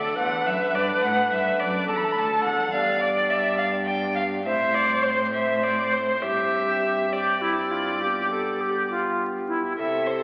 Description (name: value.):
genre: classical, baroque-style sonata movement with continuo.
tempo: 69 BPM (dotted quarters).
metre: 12/8.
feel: straight.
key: unclear.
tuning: A4 = 440 Hz.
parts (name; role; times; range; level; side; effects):
rich violin; melody; 0.0-10.2 s; C5 to B5; -28 LUFS; equal; none.
bright silver concert flute; second line; 0.0-10.2 s; E4 to D5; -27 LUFS; equal; none.
pipe organ, principal; accompaniment; 0.0-10.2 s; D2 to A4; -34 LUFS; equal; none.
clear cello; bass; 0.0-10.2 s; D2 to C3; -37 LUFS; equal; none.
room: wet concert hall reverb, RT60 2.0 s.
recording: very old 78 rpm record, vinyl crackle, nothing above 7.6 kHz.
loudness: -24 LUFS.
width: mono.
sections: 0.0-10.2 A section.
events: none.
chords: 0.0 D; 2.7 G; 4.5 Am; 6.2 Gsus4; 8.0 G.